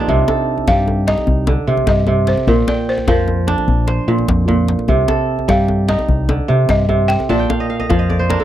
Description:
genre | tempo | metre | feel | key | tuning
west african traditional, West African string and xylophone music | 100 BPM (dotted quarters) | 12/8 | straight | C dorian | A4 = 439 Hz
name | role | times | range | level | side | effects
kora | arpeggios | 0.0-8.4 s | Bb2 to A5 | -17 LUFS | right 3 dB | none
fingered electric bass | bass | 0.1-8.4 s | Bb1 to C3 | -17 LUFS | equal | none
djembe | percussion | 0.1-8.4 s | none | -20 LUFS | left 2 dB | none
balafon | melody | 0.7-8.4 s | Bb4 to G5 | -20 LUFS | left 1 dB | none
room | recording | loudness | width
little or no reverb | dry, close 1970s-style studio recording | -13 LUFS | side -12 dB against mid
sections
0.1-8.4 A section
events
kora fill 7.3-8.4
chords
0.1 Cm; 2.5 Bb; 4.9 Cm; 7.3 Bb

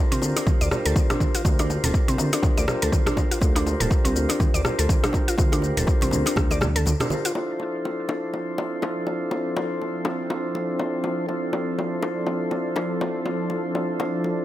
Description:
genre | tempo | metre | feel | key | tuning
afro house | 122 BPM | 4/4 | swing 58% on 16ths | D minor | A4 = 440 Hz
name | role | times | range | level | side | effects
mellow tonewheel organ | stabs | 0.0-14.4 s | D4 to C5 | -27 LUFS | equal | slow rotary speaker, sidechain pumping, dub echo
mallet-like synth pluck | arpeggios | 0.1-7.3 s | C4 to D5 | -29 LUFS | equal | chorus, sidechain pumping, dub echo
smooth synth bass | bass | 0.1-6.9 s | D1 to D2 | -25 LUFS | equal | sidechain pumping
deep house drum kit | drums | 0.1-7.3 s | hi-hat, rim click, shaker | -28 LUFS | left 1 dB | overdrive, low-pass filter on perc, studio reverb, low-pass filter on snare, low-pass filter on hats
congas | percussion | 0.1-7.2 s | none | -31 LUFS | right 2 dB | none
bongos | percussion | 0.2-14.4 s | none | -31 LUFS | left 2 dB | none
electronic kick drum | drums | 0.5-6.5 s | none | -22 LUFS | equal | overdrive, studio reverb
warm analog pad | sustained chords | 7.4-14.4 s | F3 to D5 | -30 LUFS | equal | chorus, sidechain pumping
room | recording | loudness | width
light reverb | none | -21 LUFS | side -14 dB against mid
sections
0.0-7.4 A section; 7.4-14.4 B section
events
kick drops out 6.9-7.4; band accent 7.0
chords
0.0 Bb6/D; 7.4 Dm7

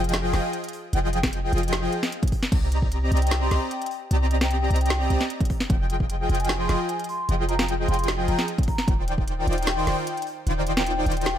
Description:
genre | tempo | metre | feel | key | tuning
future bass | 151 BPM | 4/4 | half-time | F dorian | A4 = 440 Hz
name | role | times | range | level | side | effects
airy dreamy lead | arpeggios | 0.0-11.4 s | G5 to Bb5 | -34 LUFS | left 1 dB | chorus, sidechain pumping
soft supersaw | riff | 0.0-11.4 s | Eb3 to Bb5 | -28 LUFS | equal | sidechain pumping
warm 808-style bass | bass | 0.0-11.4 s | Eb1 to C2 | -24 LUFS | equal | sidechain pumping
trap drum kit | drums | 0.0-11.3 s | crash cymbal, hi-hat, snare drum | -29 LUFS | equal | none
electronic kick drum | drums | 1.2-2.9, 5.4-6.1, 8.6-9.3 s | none | -23 LUFS | equal | overdrive
vibraphone with soft mallets | melody | 3.2-11.4 s | G5 to C6 | -31 LUFS | left 2 dB | sidechain pumping, ping-pong delay
room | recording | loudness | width
light reverb, digital ambience | none | -22 LUFS | side -10 dB against mid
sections
0.0-11.4 A section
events
none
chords
0.0 Fm9; 2.5 Cm9; 5.5 Fm9; 8.9 Ebmaj13

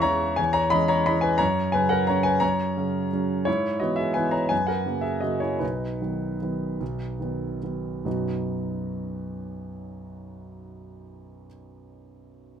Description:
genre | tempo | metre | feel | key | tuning
classical, piano waltz | 135-181 BPM | 3/4 | rubato | B major | A4 = 443 Hz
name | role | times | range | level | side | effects
warm concert grand piano | solo | 0.0-12.6 s | B1 to C#6 | -23 LUFS | equal | none
room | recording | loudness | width
light reverb | close, detailed microphones | -23 LUFS | side -8 dB against mid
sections
0.0-8.1 A section; 8.1-10.6 B section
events
slowing down 5.0-8.1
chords
0.0 C#m/E; 1.4 F#; 3.5 E/G#; 4.5 F#; 5.6 B

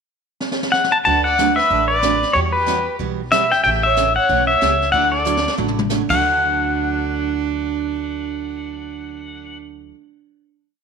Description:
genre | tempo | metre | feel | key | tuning
country, western swing | 186 BPM | 4/4 | swing 61% on 8ths | D major | A4 = 440 Hz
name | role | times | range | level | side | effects
jazz brush drum kit | drums | 0.4-6.2 s | brushed snare drum, crash cymbal, hi-hat, kick drum, snare drum, toms | -25 LUFS | equal | none
pedal steel guitar | melody | 0.7-9.6 s | B4 to A5 | -17 LUFS | left 3 dB | slapback echo
rich fiddle | second line | 1.0-9.6 s | D4 to F#5 | -26 LUFS | right 11 dB | none
picked steel-string acoustic guitar | accompaniment | 1.1-10.0 s | C#3 to B4 | -25 LUFS | right 11 dB | none
upright bass | bass | 1.1-9.9 s | A1 to E2 | -27 LUFS | left 1 dB | none
room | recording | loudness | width
moderate echo chamber reverb, RT60 1.3 s, small room ambience | 1960s-style stereo | -15 LUFS | side -6 dB against mid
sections
0.0-1.0 pickup bar; 1.0-6.2 A section; 6.2-8.8 final hit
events
drum fill 0.4-1.0, 5.3-5.9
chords
0.0 N.C.; 1.0 D6; 2.3 Emadd9; 3.6 A7; 4.9 Dadd9

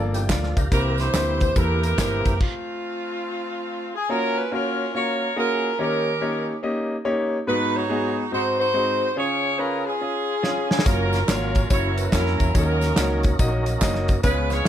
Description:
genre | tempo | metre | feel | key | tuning
uptempo gospel | 142 BPM | 4/4 | swing 64% on 8ths | F major, F# major from 4.1 s | A4 = 440 Hz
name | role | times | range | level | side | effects
clear concert grand piano | accompaniment | 0.0-14.7 s | G#2 to G5 | -26 LUFS | left 1 dB | none
tonewheel organ | sustained chords | 0.0-2.4, 10.9-14.7 s | Eb3 to B4 | -31 LUFS | right 3 dB | slow rotary speaker, overdrive, chorus vibrato
hollow-body short-scale fingered electric bass | bass | 0.0-2.4, 10.9-14.6 s | Gb1 to E#2 | -24 LUFS | equal | none
natural country drum kit | drums | 0.1-2.5, 10.4-14.7 s | crash cymbal, hi-hat, kick drum, snare drum | -23 LUFS | equal | none
tambourine and handclaps | percussion | 0.1-2.3, 10.9-14.6 s | none | -35 LUFS | right 2 dB | none
clear saxophone section | melody | 0.7-14.7 s | A3 to C#5 | -24 LUFS | right 1 dB | none
room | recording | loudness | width
light reverb | none | -20 LUFS | side -10 dB against mid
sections
0.0-4.1 A section; 4.1-14.7 A section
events
grand piano fill 0.0-0.7; stop 2.4-4.1; drum fill 10.4-10.9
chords
0.0 Bbmaj7; 0.7 C7; 2.4 F/A; 4.1 F#maj7; 5.8 D#7; 7.5 G#m7; 8.3 G#7; 9.2 C#; 10.9 F#maj7; 11.7 F#7; 12.6 D#m7

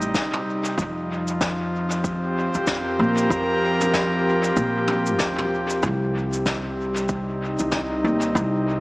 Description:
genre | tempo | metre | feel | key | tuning
ambient dub | 95 BPM | 4/4 | swing 59% on 16ths | unclear | A4 = 440 Hz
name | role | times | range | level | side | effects
airy breathy pad | sustained chords | 0.0-8.8 s | C3 to Bb4 | -23 LUFS | equal | chorus
upright bass | bass | 0.0-8.8 s | A1 to Bb2 | -26 LUFS | equal | none
jazz brush drum kit | drums | 0.0-8.5 s | cabasa, snare drum, toms | -29 LUFS | left 1 dB | dub echo
electronic kick drum | drums | 0.1-8.5 s | none | -28 LUFS | equal | overdrive
room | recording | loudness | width
light reverb, small room reverb | echo-heavy mix, small speaker sound | -20 LUFS | side -22 dB against mid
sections
0.0-8.8 A section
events
none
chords
0.0 Cm6; 0.8 F9sus4; 5.8 Cm

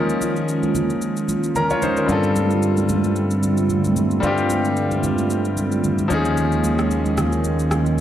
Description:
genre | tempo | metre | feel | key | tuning
amapiano | 112 BPM | 4/4 | swing 55% on 16ths | unclear | A4 = 441 Hz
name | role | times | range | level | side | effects
bright grand piano | accompaniment | 0.0-8.0 s | F3 to Bb5 | -22 LUFS | left 3 dB | none
hollow soft pad | sustained chords | 0.0-8.0 s | D3 to F4 | -23 LUFS | right 2 dB | chorus
electronic shaker and rim click | drums | 0.1-8.0 s | none | -31 LUFS | equal | none
congas | percussion | 0.2-8.0 s | none | -28 LUFS | right 2 dB | none
fingered electric bass | bass | 2.1-8.0 s | Eb2 to G2 | -21 LUFS | equal | none
room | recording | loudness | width
light reverb, studio reverb | dark, warm production | -17 LUFS | side -11 dB against mid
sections
0.0-8.0 A section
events
grand piano fill 1.3-2.1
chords
0.0 Eb9sus4; 2.1 G9sus4; 6.1 Eb9sus4

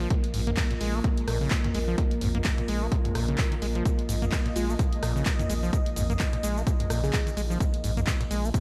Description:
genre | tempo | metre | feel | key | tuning
acid house | 128 BPM | 4/4 | swing 57% on 16ths | unclear | A4 = 440 Hz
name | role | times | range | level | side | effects
dark analog pad | sustained chords | 0.0-8.6 s | Bb3 to Eb5 | -37 LUFS | equal | chorus, sidechain pumping
acid bass, saw | riff | 0.0-8.6 s | Ab2 to Bb3 | -34 LUFS | equal | overdrive, analog delay
round analog bass | bass | 0.0-8.5 s | Bb1 | -32 LUFS | equal | sidechain pumping
warbly tape-like pad | texture | 0.0-8.6 s | F4 to Eb5 | -44 LUFS | equal | chorus, built-in reverb, sidechain pumping
electronic kick drum | drums | 0.1-8.6 s | none | -29 LUFS | equal | none
punchy analog drum machine | drums | 0.1-8.6 s | handclaps, hi-hat, rim click, shaker, toms | -35 LUFS | equal | none
bell-like FM electric piano | melody | 4.6-7.5 s | F4 to Ab4 | -39 LUFS | equal | chorus, analog delay
room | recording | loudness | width
light reverb | none | -27 LUFS | mono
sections
0.0-8.6 A section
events
none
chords
0.0 Bb5

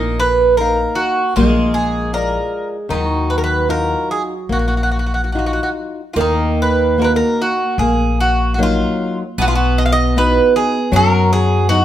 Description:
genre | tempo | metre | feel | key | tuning
fado-style ballad | 70-81 BPM | 4/4 | rubato | Eb minor | A4 = 441 Hz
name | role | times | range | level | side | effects
Greek bouzouki | melody | 0.0-11.8 s | Eb4 to F5 | -17 LUFS | right 2 dB | none
picked twelve-string acoustic guitar | second line | 0.0-11.8 s | Gb3 to B3 | -23 LUFS | right 3 dB | none
flamenco guitar | accompaniment | 0.0-11.8 s | Bb2 to F5 | -20 LUFS | left 3 dB | none
upright bass | bass | 0.0-11.8 s | Bb1 to F#2 | -19 LUFS | left 1 dB | none
room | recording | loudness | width
moderate large studio reverb, RT60 1.0 s | band playing live in one room | -14 LUFS | side -12 dB against mid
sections
0.0-6.2 A section; 6.2-11.8 A section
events
none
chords
0.0 Bbsus4; 1.4 Bb; 2.9 Ebmadd9; 6.2 Ebm; 9.4 B

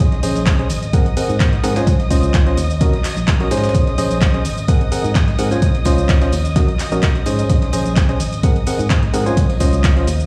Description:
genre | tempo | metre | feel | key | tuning
piano house | 128 BPM | 4/4 | swing 54% on 16ths | unclear | A4 = 440 Hz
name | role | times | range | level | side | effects
dark studio violin section | sustained chords | 0.0-10.3 s | Eb5 to Eb6 | -31 LUFS | equal | sidechain pumping
percussive organ stab | riff | 0.0-10.1 s | C4 to Ab5 | -24 LUFS | equal | chorus, cassette tape, sidechain pumping, digital delay
organ-like FM bass | bass | 0.0-10.3 s | Ab1 to Ab2 | -23 LUFS | equal | sidechain pumping
dusty soul sampler-style drum kit | drums | 0.0-10.2 s | hi-hat, snare drum | -37 LUFS | equal | none
electronic kick drum | drums | 0.0-9.9 s | none | -18 LUFS | equal | none
punchy analog drum machine | drums | 0.0-10.3 s | handclaps, hi-hat, shaker | -28 LUFS | equal | none
tambourine | percussion | 0.0-10.3 s | none | -40 LUFS | equal | none
room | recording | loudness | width
light reverb, digital ambience | played on a big sound system in a bare room, stone room reverb, studio reverb | -16 LUFS | mono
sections
0.0-10.3 A section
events
none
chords
0.0 Bbm11; 0.7 Ab9; 1.9 Dbmaj9; 2.8 Ebm7; 3.7 Bbm11; 4.4 Ab9; 5.6 Dbmaj9; 6.6 Ebm7; 7.5 Bbm11; 8.2 Ab9; 9.4 Dbmaj9

